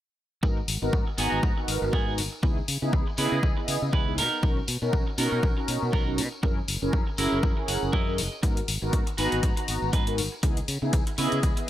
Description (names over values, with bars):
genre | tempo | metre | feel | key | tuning
filtered disco house | 120 BPM | 4/4 | swing 56% on 16ths | G# minor | A4 = 439 Hz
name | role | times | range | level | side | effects
mellow synth brass | accompaniment | 0.4-11.7 s | B3 to A#5 | -30 LUFS | equal | chorus, phaser, sidechain pumping, low-pass filter
clean electric guitar | riff | 0.4-11.6 s | B3 to F#5 | -32 LUFS | right 4 dB | sidechain pumping, low-pass filter
fingered electric bass | bass | 0.4-11.5 s | F#1 to C#3 | -31 LUFS | equal | sidechain pumping, low-pass filter
electronic kick drum | drums | 0.4-11.5 s | none | -25 LUFS | equal | overdrive
tambourine | percussion | 0.4-11.7 s | none | -42 LUFS | left 1 dB | sidechain pumping on perc, low-pass filter on perc
electronic hi-hat | drums | 0.7-11.7 s | none | -32 LUFS | left 4 dB | overdrive, sidechain pumping on hats
room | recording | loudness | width
light reverb | bright 1980s-style digital production | -24 LUFS | side -12 dB against mid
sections
0.4-11.7 A section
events
clean electric guitar fill 7.4-8.4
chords
0.4 G#m7; 2.4 C#m7; 4.2 Bmaj7; 6.4 F#7; 8.4 G#m7; 10.4 C#m7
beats
| 0.43 0.93 1.43 1.93 | 2.43 2.93 3.43 3.93 | 4.43 4.93 5.43 5.93 | 6.43 6.93 7.43 7.93 | 8.43 8.93 9.43 9.93 | 10.43 10.93 11.43